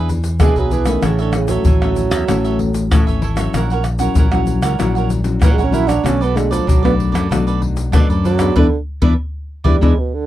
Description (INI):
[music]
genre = samba and choro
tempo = 96 BPM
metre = 4/4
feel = straight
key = A major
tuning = A4 = 441 Hz
[part]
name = cavaquinho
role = accompaniment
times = 0.0-9.9 s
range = D4 to F#5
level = -24 LUFS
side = right 10 dB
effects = none
[part]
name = nylon-string guitar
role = accompaniment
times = 0.0-9.9 s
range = F#2 to G#4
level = -20 LUFS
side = left 5 dB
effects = none
[part]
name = modern bright fingered electric bass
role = bass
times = 0.0-9.9 s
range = G#1 to E3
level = -19 LUFS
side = equal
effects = none
[part]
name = egg shaker, surdo, pandeiro and tamborim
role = percussion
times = 0.1-10.0 s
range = none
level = -17 LUFS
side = left 1 dB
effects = none
[part]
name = mellow bassoon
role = second line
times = 0.4-10.3 s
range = B2 to E4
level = -19 LUFS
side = right 7 dB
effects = none
[sound]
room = little or no reverb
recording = dry, close 1970s-style studio recording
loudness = -13 LUFS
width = side -13 dB against mid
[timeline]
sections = 0.0-10.3 A section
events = bassoon solo 0.0-10.3; band accent 8.6-10.3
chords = 0.0 E7; 1.0 A; 3.5 F#7/A#; 6.0 Bm7; 8.6 E5